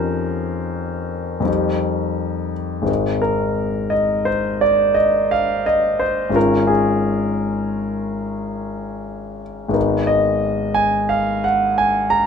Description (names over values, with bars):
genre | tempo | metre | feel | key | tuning
classical, impressionist solo piano | 87 BPM | 5/4 | rubato | unclear | A4 = 437 Hz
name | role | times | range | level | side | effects
clear concert grand piano | solo | 0.0-12.3 s | Ab1 to A#5 | -17 LUFS | left 1 dB | none
room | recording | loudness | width
light reverb | none | -17 LUFS | side -6 dB against mid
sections
0.0-12.3 A section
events
none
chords
0.0 Eb9/F; 1.5 Cm7/F; 2.9 Abadd9; 6.4 Bbm7/Ab; 9.8 G#madd9